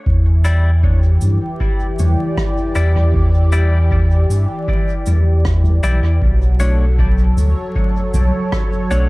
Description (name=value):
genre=ambient dub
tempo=78 BPM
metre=4/4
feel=straight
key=unclear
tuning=A4 = 438 Hz
part: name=warm analog pad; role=sustained chords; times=0.1-9.1 s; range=E3 to D5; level=-22 LUFS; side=equal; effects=chorus
part: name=warm sub bass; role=bass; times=0.1-9.1 s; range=B1 to G2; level=-13 LUFS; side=equal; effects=none
part: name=electronic kick drum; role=drums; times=0.1-8.7 s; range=none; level=-20 LUFS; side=equal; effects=none
part: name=clean electric guitar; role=stabs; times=0.4-9.1 s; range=G3 to D5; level=-27 LUFS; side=left 2 dB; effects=dub echo
part: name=soft-mallet drum kit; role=drums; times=0.4-9.1 s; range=cabasa, rim click, toms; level=-27 LUFS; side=equal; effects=dub echo
room=small room ambience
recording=echo-heavy mix, vinyl crackle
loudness=-13 LUFS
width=side -22 dB against mid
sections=0.1-9.1 A section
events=none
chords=0.1 Em7; 6.2 Bm9